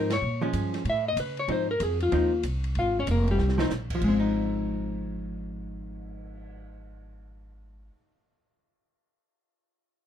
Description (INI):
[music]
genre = jazz, small-group swing and bop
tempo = 189 BPM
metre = 4/4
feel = swing 64% on 8ths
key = Ab major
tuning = A4 = 441 Hz
[part]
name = hollow-body jazz guitar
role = melody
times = 0.0-7.9 s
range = G3 to F5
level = -27 LUFS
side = left 2 dB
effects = none
[part]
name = hollow-body jazz guitar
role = accompaniment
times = 0.0-8.1 s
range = F3 to Eb4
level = -31 LUFS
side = equal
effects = none
[part]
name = upright bass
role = bass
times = 0.0-7.9 s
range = F1 to C#3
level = -30 LUFS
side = equal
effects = none
[part]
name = open jazz drum kit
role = drums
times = 0.1-6.5 s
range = crash cymbal, cymbal swell, hi-hat, kick drum, ride cymbal, snare drum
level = -38 LUFS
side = right 2 dB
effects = none
[sound]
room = light reverb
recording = minimal, uncompressed stereo recording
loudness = -24 LUFS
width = side -9 dB against mid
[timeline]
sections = 0.0-4.0 A section; 4.0-6.6 B section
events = band accent 0.1; drum fill 3.4-3.7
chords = 0.2 Bbm7; 0.8 A; 1.5 Ab6